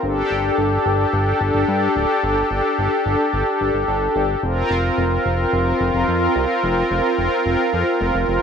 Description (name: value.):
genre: synthwave.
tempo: 109 BPM.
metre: 4/4.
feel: straight.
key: G minor.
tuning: A4 = 440 Hz.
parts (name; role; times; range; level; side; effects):
brassy analog pad; sustained chords; 0.0-8.4 s; C4 to Bb4; -18 LUFS; equal; chorus, tremolo.
fat analog bass; bass; 0.0-8.4 s; D1 to G2; -22 LUFS; equal; none.
room: wet plate reverb, RT60 2.8 s.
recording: dreamy mix soaked in reverb.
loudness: -17 LUFS.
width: side -7 dB against mid.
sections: 0.0-8.4 A section.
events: none.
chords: 0.0 Gsus2; 4.4 Fsus4.